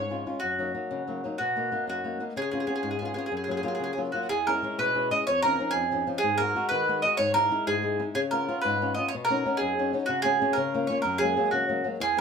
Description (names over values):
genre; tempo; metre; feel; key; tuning
italian folk, Italian serenade; 124 BPM (dotted quarters); 6/8; straight; F# major; A4 = 438 Hz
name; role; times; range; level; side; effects
mandolin; melody; 0.0-12.2 s; F#4 to D#5; -26 LUFS; right 2 dB; none
flamenco guitar; accompaniment; 0.0-12.2 s; E2 to F#4; -30 LUFS; left 4 dB; none
room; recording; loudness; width
wet studio reverb, RT60 0.5 s; minimal, uncompressed stereo recording; -24 LUFS; side -6 dB against mid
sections
0.0-4.3 A section; 4.3-12.0 B section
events
none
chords
0.4 F#6; 1.4 Bmaj7; 2.4 C#7; 3.3 F#maj7; 4.3 E6; 5.3 C#add9/E#; 6.2 G#m7; 7.2 Emaj7/G#; 8.2 C#7; 9.1 Badd9; 10.1 C#7sus4; 10.6 C#6; 11.0 F#add9